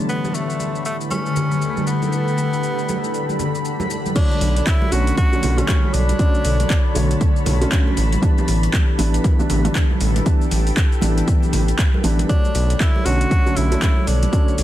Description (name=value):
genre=deep house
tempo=118 BPM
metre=4/4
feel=swing 60% on 16ths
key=B minor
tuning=A4 = 440 Hz
part: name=dark analog pad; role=sustained chords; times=0.0-14.6 s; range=D3 to C#5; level=-30 LUFS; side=equal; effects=chorus, sidechain pumping
part: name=felt-muted upright piano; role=stabs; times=0.0-14.5 s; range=A2 to C#5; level=-24 LUFS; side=equal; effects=analog delay
part: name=granular cloud pad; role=texture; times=0.0-14.6 s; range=D3 to B5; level=-26 LUFS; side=left 2 dB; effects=built-in reverb, sidechain pumping
part: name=bright tenor saxophone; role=melody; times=0.1-7.5, 12.3-14.6 s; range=A3 to F#4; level=-26 LUFS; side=equal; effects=analog delay
part: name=deep house drum kit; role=drums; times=0.1-14.6 s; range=crash cymbal, handclaps, hi-hat, shaker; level=-28 LUFS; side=left 1 dB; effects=overdrive, small room ambience
part: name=congas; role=percussion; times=0.2-14.3 s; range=none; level=-29 LUFS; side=right 4 dB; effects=none
part: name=electronic kick drum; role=drums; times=4.2-14.4 s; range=none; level=-17 LUFS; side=equal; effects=overdrive, small room ambience
part: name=round analog bass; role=bass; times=4.4-14.6 s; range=A1 to B1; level=-18 LUFS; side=equal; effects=sidechain pumping
room=little or no reverb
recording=dense, heavily limited modern master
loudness=-16 LUFS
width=side -13 dB against mid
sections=0.0-4.2 A section; 4.2-14.6 B section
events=drop 4.2-14.6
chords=0.0 A9sus4; 4.2 Bm9; 8.0 A9sus4; 12.3 Bm9